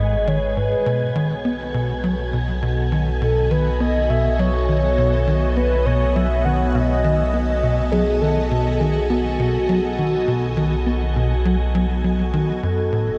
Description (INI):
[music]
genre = ambient, sequencer-driven space music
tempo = 102 BPM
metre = 4/4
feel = straight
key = unclear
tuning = A4 = 440 Hz
[part]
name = mellow horn-like synth lead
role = melody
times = 0.0-13.2 s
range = F#4 to F#5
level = -25 LUFS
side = equal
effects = chorus, tape echo
[part]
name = string machine, full ensemble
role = sustained chords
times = 0.0-13.2 s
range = G#3 to F#5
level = -29 LUFS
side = equal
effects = phaser, ensemble chorus
[part]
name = tight sequencer bass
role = riff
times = 0.0-13.1 s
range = F#2 to B3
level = -24 LUFS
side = equal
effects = subtle chorus, tape echo
[part]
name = warm sub bass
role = bass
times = 0.0-13.2 s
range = F#1 to B1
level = -25 LUFS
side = equal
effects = none
[part]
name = wind-like tuned noise texture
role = texture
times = 0.0-13.2 s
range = G#5 to D#6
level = -36 LUFS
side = equal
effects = built-in reverb
[sound]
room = moderate huge ambient reverb, RT60 8.0 s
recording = dark, warm production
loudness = -20 LUFS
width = mono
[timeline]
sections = 0.0-12.6 A section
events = none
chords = 0.0 G#m7; 0.9 B7; 12.6 F#m